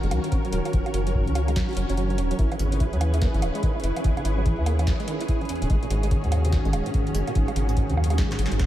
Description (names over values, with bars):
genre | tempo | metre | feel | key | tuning
IDM | 145 BPM | 4/4 | swing 62% on 16ths | unclear | A4 = 441 Hz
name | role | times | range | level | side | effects
soft string machine | sustained chords | 0.0-8.7 s | Eb3 to B4 | -30 LUFS | equal | ensemble chorus
deep acid bass | arpeggios | 0.0-8.7 s | Ab1 to Gb4 | -31 LUFS | right 3 dB | analog delay
rubbery square bass | bass | 0.0-8.7 s | Eb1 to Eb2 | -24 LUFS | equal | tube saturation
booming analog drum machine | drums | 0.0-8.7 s | bongos, hi-hat, snare drum | -34 LUFS | right 2 dB | analog delay
flickering grainy texture | texture | 0.0-8.7 s | Db4 to Db5 | -38 LUFS | right 1 dB | built-in reverb, wide subtle chorus, sidechain pumping
electronic kick drum | drums | 0.3-8.7 s | none | -25 LUFS | equal | none
room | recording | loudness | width
light reverb | none | -21 LUFS | side -13 dB against mid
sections
0.0-8.7 A section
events
drum fill 8.2-8.7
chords
0.0 Gb6; 2.4 E6; 5.7 Ab7sus4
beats
0.32 | 0.73 1.15 1.56 1.98 | 2.39 2.80 3.22 3.63 | 4.04 4.46 4.87 5.29 | 5.70 6.11 6.53 6.94 | 7.35 7.77 8.18 8.60